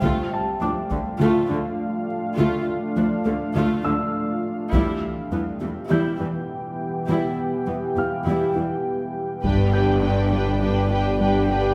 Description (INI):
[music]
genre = cinematic, hybrid orchestral and electronic film score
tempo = 102 BPM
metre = 4/4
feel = straight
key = unclear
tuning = A4 = 440 Hz
[part]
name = dark symphonic viola section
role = accompaniment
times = 0.0-11.7 s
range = D3 to G4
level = -28 LUFS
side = equal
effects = none
[part]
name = deep dark ambient pad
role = sustained chords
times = 0.0-11.7 s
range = E3 to G5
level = -28 LUFS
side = equal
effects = chorus, built-in reverb
[part]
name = soft round pluck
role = arpeggios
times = 0.0-11.7 s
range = D3 to E4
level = -32 LUFS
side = equal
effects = chorus
[part]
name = rich symphonic cello section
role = bass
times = 0.0-11.7 s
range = D2 to G2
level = -29 LUFS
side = equal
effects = none
[part]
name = taiko ensemble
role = drums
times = 0.0-1.2, 4.7-5.9, 9.4-10.6 s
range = none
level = -30 LUFS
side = equal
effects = none
[part]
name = dark grand piano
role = texture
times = 0.0-11.7 s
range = G4 to G6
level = -35 LUFS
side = equal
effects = none
[part]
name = warm studio violin section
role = second line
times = 9.4-11.7 s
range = B4 to G5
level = -31 LUFS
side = equal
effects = none
[part]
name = mellow French horn section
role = sustained chords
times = 9.4-11.7 s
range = B3 to D4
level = -30 LUFS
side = equal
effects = none
[part]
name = rich symphonic double bass section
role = bass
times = 9.4-11.7 s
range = G1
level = -30 LUFS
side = equal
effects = none
[part]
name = swelling detuned saw bass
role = bass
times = 9.4-11.7 s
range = G1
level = -30 LUFS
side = equal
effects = none
[sound]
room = wet recital hall reverb, RT60 1.3 s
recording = recorded in a church or concert hall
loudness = -23 LUFS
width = mono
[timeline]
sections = 0.0-9.4 A section; 9.4-11.7 B section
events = build-up 0.0-9.4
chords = 0.0 Dm; 4.7 Em; 9.4 G